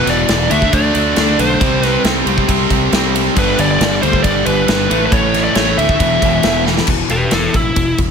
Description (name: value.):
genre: hard rock.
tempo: 136 BPM.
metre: 4/4.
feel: straight.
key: E minor.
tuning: A4 = 440 Hz.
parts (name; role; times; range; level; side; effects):
biting lead guitar; melody; 0.0-8.0 s; E4 to E5; -17 LUFS; equal; overdrive, slapback echo.
crunchy overdriven guitar; riff; 0.0-6.9 s; E2 to D4; -20 LUFS; right 15 dB; none.
high-gain distorted guitar; riff; 0.0-6.9 s; E2 to D4; -21 LUFS; equal; distortion.
overdriven semi-hollow guitar; riff; 0.0-8.1 s; E2 to D4; -20 LUFS; left 12 dB; none.
growling fingered electric bass; bass; 0.0-8.1 s; E1 to D2; -20 LUFS; equal; overdrive.
big rock drum kit; drums; 0.1-8.1 s; crash cymbal, kick drum, ride cymbal, snare drum; -17 LUFS; equal; none.
room: moderate studio reverb, RT60 0.8 s.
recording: none.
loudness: -11 LUFS.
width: side -6 dB against mid.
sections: 0.0-6.9 A section; 6.9-8.1 B section.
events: drum fill 6.7; lead electric guitar solo 6.9-8.1.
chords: 0.0 E5; 0.5 D5; 1.6 C5; 3.4 G; 4.9 A5; 6.0 E5.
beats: 0.28 0.72 1.16 | 1.60 2.04 2.48 2.92 | 3.37 3.81 4.25 4.68 | 5.12 5.56 6.00 6.45 | 6.88 7.33 7.77.